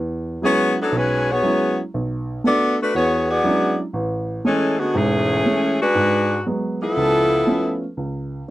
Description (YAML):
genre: jazz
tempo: 119 BPM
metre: 4/4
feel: swing 69% on 8ths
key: unclear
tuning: A4 = 440 Hz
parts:
  - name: warm baby grand piano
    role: accompaniment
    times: 0.0-8.5 s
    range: E1 to E4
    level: -22 LUFS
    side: right 1 dB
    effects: none
  - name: warm saxophone section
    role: melody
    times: 0.4-7.8 s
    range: D3 to D5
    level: -18 LUFS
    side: left 1 dB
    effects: none
room: light reverb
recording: dry, close 1970s-style studio recording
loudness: -17 LUFS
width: side -16 dB against mid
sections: 0.0-8.0 A section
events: none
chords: 0.0 E69; 1.9 Bm7; 2.9 E13; 3.9 Amaj7; 5.9 G#m7b5; 7.0 C#7alt; 8.0 N.C.